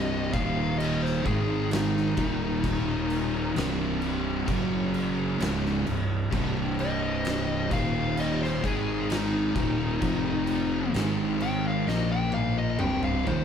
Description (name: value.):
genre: stoner and doom metal.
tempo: 65 BPM.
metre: 4/4.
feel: straight.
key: C minor.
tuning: A4 = 438 Hz.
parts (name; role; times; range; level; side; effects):
fuzz lead guitar; melody; 0.0-13.4 s; Eb4 to G5; -31 LUFS; left 4 dB; distortion.
bowed-like drone; sustained chords; 0.0-13.4 s; Eb3 to Eb5; -40 LUFS; right 1 dB; none.
overdriven electric guitar; riff; 0.0-13.4 s; C2 to Bb3; -34 LUFS; equal; none.
thick fuzz guitar; riff; 0.0-13.4 s; C2 to Bb3; -31 LUFS; left 5 dB; distortion.
thick fuzz guitar; riff; 0.0-13.4 s; C2 to Bb3; -31 LUFS; right 7 dB; distortion.
fuzz fingered electric bass; bass; 0.0-13.4 s; C1 to Bb1; -33 LUFS; equal; overdrive.
oversized low-tuned drum kit; drums; 0.3-13.4 s; crash cymbal, kick drum, snare drum, toms; -32 LUFS; equal; none.
room: moderate large studio reverb, RT60 1.2 s.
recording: band playing live in one room.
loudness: -24 LUFS.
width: side -8 dB against mid.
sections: 0.0-13.4 A section.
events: lead electric guitar solo 0.0-13.4; drum fill 11.9-13.4.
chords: 0.3 Eb5; 1.3 Ab5; 2.2 Eb5; 3.6 C5; 4.5 F#5; 5.4 Cm; 7.7 Eb5; 8.6 Ab5; 9.6 Cm; 10.0 F5; 10.9 Ab5; 11.9 Bb5; 12.8 Cm.